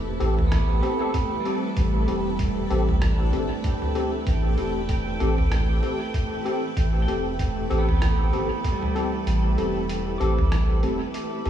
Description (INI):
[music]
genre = ambient dub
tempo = 96 BPM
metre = 4/4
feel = swing 58% on 16ths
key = A minor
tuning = A4 = 436 Hz
[part]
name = granular cloud pad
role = sustained chords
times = 0.0-11.5 s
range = A3 to B4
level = -31 LUFS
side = right 1 dB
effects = built-in reverb
[part]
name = pedal steel guitar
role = arpeggios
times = 0.0-11.5 s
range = G3 to D6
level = -32 LUFS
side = right 3 dB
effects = dub echo
[part]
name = warm sub bass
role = bass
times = 0.0-11.5 s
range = E1 to C2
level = -23 LUFS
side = equal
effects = none
[part]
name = bright tine electric piano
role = stabs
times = 0.2-11.5 s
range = C4 to A4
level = -28 LUFS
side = left 2 dB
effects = ensemble chorus, dub echo
[part]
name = lo-fi sampler-style drum kit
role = drums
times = 0.2-11.5 s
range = hi-hat, rim click, toms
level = -32 LUFS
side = right 1 dB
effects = dub echo
[part]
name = electronic kick drum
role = drums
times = 0.5-8.8 s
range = none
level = -27 LUFS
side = equal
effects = none
[part]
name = bubbling stepped-filter texture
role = texture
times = 1.8-11.5 s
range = G5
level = -38 LUFS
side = right 5 dB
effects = chorus, built-in reverb
[sound]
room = light reverb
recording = studio reverb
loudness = -21 LUFS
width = side -10 dB against mid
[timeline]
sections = 0.0-11.5 A section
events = kick drops out 9.3-11.5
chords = 0.0 Am7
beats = 0.52 1.14 | 1.76 2.39 3.02 3.64 | 4.26 4.89 5.51 6.14 | 6.76 7.39 8.02 8.64 | 9.27 9.89 10.52 11.14